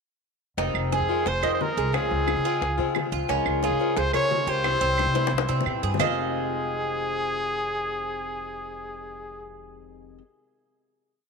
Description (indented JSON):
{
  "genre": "latin, Cuban son and guajira",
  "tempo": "177 BPM",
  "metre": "4/4",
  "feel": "straight",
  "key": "F minor",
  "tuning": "A4 = 439 Hz",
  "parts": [
    { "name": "picked swing-style acoustic guitar", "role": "accompaniment", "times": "0.6-10.2 s", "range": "F2 to Bb4", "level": "-30 LUFS", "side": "left 8 dB", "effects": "none" },
    { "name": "Cuban tres", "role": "arpeggios", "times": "0.6-10.2 s", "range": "C4 to Eb5", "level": "-29 LUFS", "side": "right 10 dB", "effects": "none" },
    { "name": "upright bass", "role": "bass", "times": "0.6-10.2 s", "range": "F1 to Db3", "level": "-31 LUFS", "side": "right 1 dB", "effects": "none" },
    { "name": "bongos", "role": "percussion", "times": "0.6-6.1 s", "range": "none", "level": "-32 LUFS", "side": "left 12 dB", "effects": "none" },
    { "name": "claves", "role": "percussion", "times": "0.8-6.1 s", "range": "none", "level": "-34 LUFS", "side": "right 16 dB", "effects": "none" },
    { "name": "bright trumpet", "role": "melody", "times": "0.9-9.5 s", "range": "Ab4 to Db5", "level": "-28 LUFS", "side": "equal", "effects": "none" }
  ],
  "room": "wet spring reverb, RT60 2.7 s",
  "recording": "1960s-style stereo with parts hard left and right",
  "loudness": "-23 LUFS",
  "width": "side -4 dB against mid",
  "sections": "0.6-6.0 verse; 6.0-8.7 final chord",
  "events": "drum fill 5.2-6.0",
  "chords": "0.6 Fm7; 1.9 Dbmaj7; 3.3 Bbm7/Db; 4.6 C; 6.0 Fm7"
}